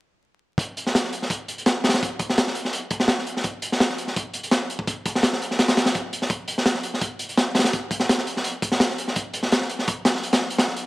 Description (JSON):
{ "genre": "drum and bass", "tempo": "168 BPM", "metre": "4/4", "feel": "swing 53% on 16ths", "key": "none", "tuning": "none", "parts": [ { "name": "crunchy breakbeat drum kit", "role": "drums", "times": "0.6-10.9 s", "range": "hi-hat, kick drum, snare drum", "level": "-21 LUFS", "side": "equal", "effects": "high-pass filter on kick, high-pass filter on hats, high-pass filter on snare, high-pass filter on room" } ], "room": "light reverb", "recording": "vinyl crackle", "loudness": "-21 LUFS", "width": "side -18 dB against mid", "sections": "0.6-10.9 A section", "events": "none", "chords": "none", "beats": "| 0.59 0.95 1.30 1.66 | 2.02 2.38 2.73 3.09 | 3.45 3.80 4.16 4.52 | 4.88 5.23 5.59 5.95 | 6.30 6.66 7.02 7.38 | 7.73 8.09 8.45 8.80 | 9.16 9.52 9.88 10.23 | 10.59" }